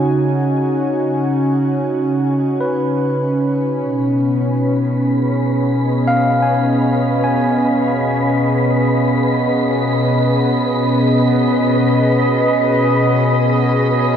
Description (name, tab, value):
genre	ambient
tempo	52 BPM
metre	3/4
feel	straight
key	unclear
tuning	A4 = 440 Hz
part	warm analog pad	sustained chords	0.0-14.2 s	Cb3 to Ab5	-15 LUFS	equal	chorus, shimmer reverb
part	overdriven tine electric piano	arpeggios	0.0-14.2 s	Cb5 to Ab5	-22 LUFS	equal	diffuse ambient delay, shimmer reverb
part	wind-like tuned noise texture	texture	4.5-14.2 s	Cb5 to Cb6	-22 LUFS	left 2 dB	built-in reverb, shimmer reverb
room	wet lush hall reverb, RT60 2.6 s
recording	none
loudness	-14 LUFS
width	side -8 dB against mid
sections	0.0-14.2 A section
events	fade-in on tine electric piano 0.0-14.2; filter sweep on analog synth pad 0.0-14.2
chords	0.0 Dbsus2; 3.8 Cb6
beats	| 0.29 1.44 2.61 | 3.77 4.93 6.08 | 7.23 8.37 9.51 | 10.64 11.77 12.91 | 14.05